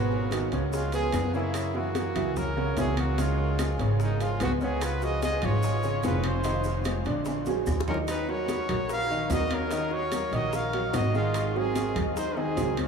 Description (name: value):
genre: Afro-Cuban jazz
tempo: 147 BPM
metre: 4/4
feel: straight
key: Db mixolydian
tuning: A4 = 440 Hz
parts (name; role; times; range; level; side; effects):
- clear trumpet; melody; 0.0-12.9 s; Db4 to F5; -32 LUFS; equal; none
- breathy tenor saxophone; second line; 0.0-12.9 s; F3 to Bb4; -34 LUFS; left 1 dB; none
- clear upright piano; accompaniment; 0.0-12.9 s; Cb3 to Eb5; -31 LUFS; right 2 dB; none
- upright bass; bass; 0.0-12.9 s; F1 to Gb2; -30 LUFS; right 1 dB; none
- bongos; percussion; 0.1-12.8 s; none; -40 LUFS; left 5 dB; none
- congas; percussion; 0.1-12.9 s; none; -36 LUFS; left 4 dB; none
- claves; percussion; 0.3-12.9 s; none; -49 LUFS; left 4 dB; none
- maracas; percussion; 0.3-12.9 s; none; -47 LUFS; right 4 dB; none
- timbales; percussion; 0.3-12.9 s; none; -40 LUFS; right 7 dB; none
room: wet huge ambient reverb, RT60 8.8 s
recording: in a vast, echoing space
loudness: -25 LUFS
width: side -6 dB against mid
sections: 0.0-12.9 A section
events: drum fill 7.3-8.1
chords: 0.0 Abm7; 0.7 Db7; 1.6 Gb7; 3.2 Db; 6.5 Fm7; 7.3 Bbaug7; 8.1 Ebm7; 11.3 Ab7